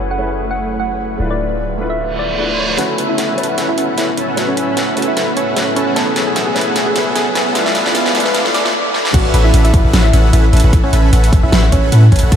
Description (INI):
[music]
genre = future bass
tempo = 151 BPM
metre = 4/4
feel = swing 55% on 16ths, half-time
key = A major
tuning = A4 = 439 Hz
[part]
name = thumb-piano-like synth pluck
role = melody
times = 0.0-12.4 s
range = C#4 to D6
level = -20 LUFS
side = equal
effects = chorus, sidechain pumping, analog delay
[part]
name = warm grand piano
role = accompaniment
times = 0.0-9.2 s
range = A3 to B4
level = -22 LUFS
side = left 2 dB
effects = ensemble chorus, sidechain pumping, tape echo
[part]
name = shimmering ambient pad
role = sustained chords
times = 0.0-8.7 s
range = F#2 to B4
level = -27 LUFS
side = right 2 dB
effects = chorus, built-in reverb, sidechain pumping
[part]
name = warm 808-style bass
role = bass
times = 0.0-2.8, 9.1-12.4 s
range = D1 to A2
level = -13 LUFS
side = equal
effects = sidechain pumping
[part]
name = reverse cymbal and riser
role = sound effects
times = 2.1-8.7 s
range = none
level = -26 LUFS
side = right 2 dB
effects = none
[part]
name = dense compressed supersaw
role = riff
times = 2.8-12.4 s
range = B3 to B5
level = -18 LUFS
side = equal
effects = sidechain pumping, low-pass filter
[part]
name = dubstep drum kit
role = drums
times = 2.8-12.4 s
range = crash cymbal, hi-hat, snare drum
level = -19 LUFS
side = equal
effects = high-pass filter on snare, high-pass filter on hats, high-pass filter on cymbals
[part]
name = electronic kick drum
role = drums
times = 9.1-12.4 s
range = none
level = -13 LUFS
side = equal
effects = none
[sound]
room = moderate huge ambient reverb, RT60 7.8 s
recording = dreamy mix soaked in reverb, high-pass filter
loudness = -12 LUFS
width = side -9 dB against mid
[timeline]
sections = 0.0-2.8 A section; 2.8-9.1 B section; 9.1-12.4 C section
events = filter sweep on ambient pad 0.0-2.8; reverse cymbal 2.1-2.8; build-up 2.8-9.1; drum fill 2.8-8.7, 8.9; riser 2.8-8.7; filter sweep on supersaw synth 2.8-9.1; filter sweep on synth pluck 2.8-9.1; filter sweep 2.8-9.1; drop 9.1-12.4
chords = 0.0 F#m11; 1.2 Dm6; 2.8 A69; 6.0 F#m11; 7.6 Dm6; 9.1 A69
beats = 0.00 0.40 0.80 | 1.20 1.59 1.99 2.39 | 2.78 3.18 3.58 3.98 | 4.37 4.77 5.17 5.57 | 5.96 6.36 6.76 7.16 | 7.55 7.95 8.35 8.74 | 9.14 9.54 9.94 10.33 | 10.73 11.13 11.53 11.92 | 12.32